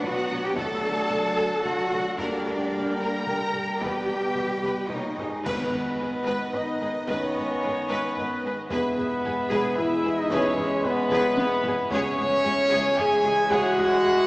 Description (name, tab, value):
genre	cinematic, epic orchestral film score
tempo	112 BPM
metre	3/4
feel	straight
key	G# minor from 5.5 s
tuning	A4 = 439 Hz
part	rich symphonic violin section	melody	0.0-14.3 s	D5 to Bb5	-36 LUFS	left 1 dB	none
part	warm symphonic violin section	second line	0.0-14.1 s	G#4 to G5	-33 LUFS	left 1 dB	none
part	rich studio viola section	accompaniment	0.0-14.1 s	F#3 to B4	-32 LUFS	equal	none
part	clear trombone section	sustained chords	0.0-14.3 s	A#2 to B3	-34 LUFS	equal	none
part	mellow French horn section	sustained chords	0.0-14.3 s	G3 to G#4	-27 LUFS	equal	none
part	warm trumpet section	stabs	0.0-14.3 s	G#4 to G#5	-29 LUFS	equal	none
part	warm studio double bass section	bass	0.0-14.1 s	E1 to G2	-38 LUFS	equal	none
part	warm symphonic cello section	bass	0.0-14.1 s	C#2 to Bb4	-31 LUFS	equal	none
part	taiko ensemble	drums	0.0-14.3 s	none	-38 LUFS	equal	none
part	timpani	percussion	5.4-6.2 s	G#2	-42 LUFS	equal	none
part	clash cymbals and concert bass drum	percussion	5.5-6.5 s	none	-41 LUFS	equal	none
part	sub drop	sound effects	5.5-7.1 s	none	barely audible	none	none
room	wet church reverb, RT60 3.0 s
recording	recorded in a church or concert hall, small speaker sound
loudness	-22 LUFS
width	side -22 dB against mid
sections	0.0-5.5 A section; 5.5-14.3 B section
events	drum fill 4.6-5.5, 11.1-11.9; band accent 5.5-6.0; impact 5.5-7.1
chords	0.0 B5; 0.6 D; 2.2 Gm; 3.8 Em; 4.9 D#7; 5.5 G#m; 8.7 E; 11.9 C#m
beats	0.04 | 0.58 1.11 1.65 | 2.19 2.73 3.27 | 3.81 4.36 4.90 | 5.45 5.99 6.54 | 7.08 7.62 8.16 | 8.70 9.24 9.77 | 10.30 10.84 11.37 | 11.90 12.44 12.97 | 13.51 14.05